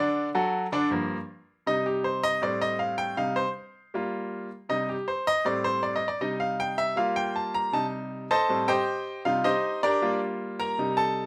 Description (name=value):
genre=latin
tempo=158 BPM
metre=4/4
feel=straight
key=G minor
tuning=A4 = 440 Hz
part: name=bright baby grand piano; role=solo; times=0.0-11.3 s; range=G2 to Bb5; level=-27 LUFS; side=equal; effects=none
room=moderate studio reverb, RT60 0.8 s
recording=none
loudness=-27 LUFS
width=mono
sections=0.9-11.3 A section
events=grand piano solo 0.9-11.3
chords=0.0 D; 0.9 Gm7; 1.7 Cm; 2.4 Am7b5; 3.2 Cm; 3.9 Gm7; 4.7 Cm; 5.5 Cm69/A; 6.2 Cm; 7.0 Gm7; 7.7 Cm; 8.5 Am7b5; 9.3 Cm; 10.0 Gm7